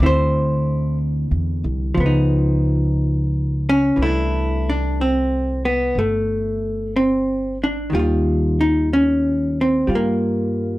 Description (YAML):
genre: jazz ballad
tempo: 61 BPM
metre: 4/4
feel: swing 68% on 8ths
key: C major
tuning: A4 = 441 Hz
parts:
  - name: vintage hollow-body jazz guitar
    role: accompaniment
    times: 0.0-10.8 s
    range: D3 to C5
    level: -19 LUFS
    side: equal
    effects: none
  - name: upright bass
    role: bass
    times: 0.0-10.8 s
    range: G1 to G2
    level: -21 LUFS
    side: equal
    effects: none
room: light reverb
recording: dark, warm production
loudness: -17 LUFS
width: side -18 dB against mid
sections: 0.0-4.0 A section; 4.0-10.8 B section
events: none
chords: 0.0 Dsus2; 2.0 Db9; 4.0 C69; 7.9 Ebadd9